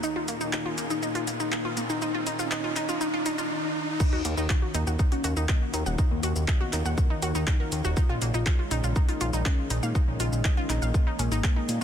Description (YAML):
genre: melodic techno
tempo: 121 BPM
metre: 4/4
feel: straight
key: Eb minor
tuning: A4 = 440 Hz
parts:
  - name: soft octave-layered synth lead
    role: melody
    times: 0.0-11.8 s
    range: Bb3 to F4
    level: -33 LUFS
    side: left 2 dB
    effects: chorus, phaser, cassette tape, sidechain pumping, ping-pong delay
  - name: lush unison pad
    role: sustained chords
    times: 0.0-11.8 s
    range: Bb2 to Ab4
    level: -38 LUFS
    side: equal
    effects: chorus, sidechain pumping
  - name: wide unison pluck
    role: arpeggios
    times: 0.0-11.8 s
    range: Bb3 to Gb5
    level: -32 LUFS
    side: equal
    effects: sidechain pumping, ping-pong delay
  - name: deep house drum kit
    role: drums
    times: 0.0-11.8 s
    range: crash cymbal, handclaps, hi-hat, shaker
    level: -34 LUFS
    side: equal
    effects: none
  - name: riser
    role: sound effects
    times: 0.0-4.0 s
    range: none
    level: -36 LUFS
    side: right 1 dB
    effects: none
  - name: analog drone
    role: drone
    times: 5.2-11.8 s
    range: Eb3 to Eb4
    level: -41 LUFS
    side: left 1 dB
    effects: chorus, sidechain pumping
  - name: electronic kick drum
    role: drums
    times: 4.0-11.5 s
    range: none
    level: -24 LUFS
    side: equal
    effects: none
  - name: fat analog bass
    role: bass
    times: 4.1-11.8 s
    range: Eb1 to Bb2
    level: -27 LUFS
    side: equal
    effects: sidechain pumping
room: light reverb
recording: dense, heavily limited modern master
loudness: -24 LUFS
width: side -9 dB against mid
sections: 0.0-4.0 A section; 4.0-11.8 B section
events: build-up 0.0-4.0; riser 0.0-4.0; drop 4.0-11.8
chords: 0.0 Bbm7; 4.0 Ebm7; 8.0 Bbm7